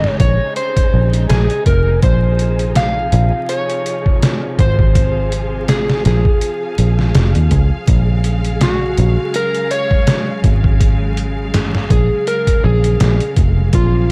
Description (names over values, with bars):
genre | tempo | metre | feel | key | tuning
trip hop | 82 BPM | 4/4 | swing 55% on 16ths | unclear | A4 = 440 Hz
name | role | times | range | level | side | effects
electric slide guitar | melody | 0.0-14.1 s | F4 to F5 | -22 LUFS | equal | tape echo
rich symphonic string section | sustained chords | 0.0-14.1 s | C3 to F5 | -28 LUFS | equal | none
fingered electric bass | bass | 0.0-14.1 s | F1 to Eb2 | -17 LUFS | equal | tube saturation
trip hop sampler-style drum kit | drums | 0.0-13.9 s | hi-hat, kick drum, snare drum | -18 LUFS | equal | none
flickering grainy texture | texture | 0.0-14.1 s | Ab4 | -33 LUFS | equal | built-in reverb
room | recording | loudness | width
digital ambience | dark, warm production, vinyl crackle | -15 LUFS | mono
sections
0.0-14.1 A section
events
none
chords
0.0 Bbm11; 7.9 Gbmaj9